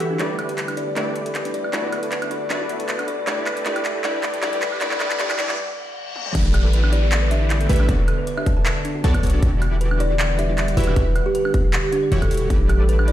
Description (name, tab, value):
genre	future bass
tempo	156 BPM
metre	4/4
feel	swing 54% on 16ths, half-time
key	E minor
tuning	A4 = 440 Hz
part	kalimba	melody	0.0-13.1 s	G4 to A5	-26 LUFS	equal	sidechain pumping, dub echo
part	ethereal airy pad	sustained chords	0.0-13.1 s	D3 to F#5	-32 LUFS	equal	ensemble chorus, built-in reverb, sidechain pumping
part	thumb-piano-like synth pluck	arpeggios	0.0-13.1 s	D4 to D5	-32 LUFS	left 1 dB	chorus, sidechain pumping, dub echo
part	supersaw stab	riff	0.0-13.1 s	E3 to E5	-27 LUFS	equal	sidechain pumping, low-pass filter
part	warm 808-style bass	bass	0.0-13.1 s	E1 to B1	-19 LUFS	equal	sidechain pumping, high-pass filter
part	big-room dance drum kit	drums	0.0-13.1 s	crash cymbal, handclaps, hi-hat, toms, woodblock	-27 LUFS	right 1 dB	none
part	riser, reverse cymbal and downlifter	sound effects	2.8-9.4 s	none	-33 LUFS	left 1 dB	none
part	electronic kick drum	drums	6.3-12.6 s	none	-19 LUFS	equal	none
room	light reverb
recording	played on a big sound system in a bare room, stone room reverb, high-pass filter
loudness	-18 LUFS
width	side -12 dB against mid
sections	0.0-6.3 A section; 6.3-13.1 B section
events	build-up 0.0-6.3; filter sweep on supersaw synth 0.0-6.3; filter sweep on kalimba 0.0-6.3; filter sweep 0.0-6.3; drum fill 0.2-5.6, 6.2; break 5.6-6.3; reverse cymbal 5.6-6.3; drop 6.3-13.1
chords	0.2 A9sus4; 1.7 Bm7; 3.3 Em9; 6.3 A9sus4; 7.9 Bm7; 9.4 Em9; 12.5 A9sus4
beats	| 0.19 0.58 0.96 1.35 | 1.73 2.12 2.50 2.89 | 3.27 3.66 4.04 4.42 | 4.81 5.19 5.58 5.96 | 6.35 6.73 7.12 7.50 | 7.89 8.27 8.66 9.04 | 9.43 9.81 10.19 10.58 | 10.96 11.35 11.73 12.12 | 12.50 12.89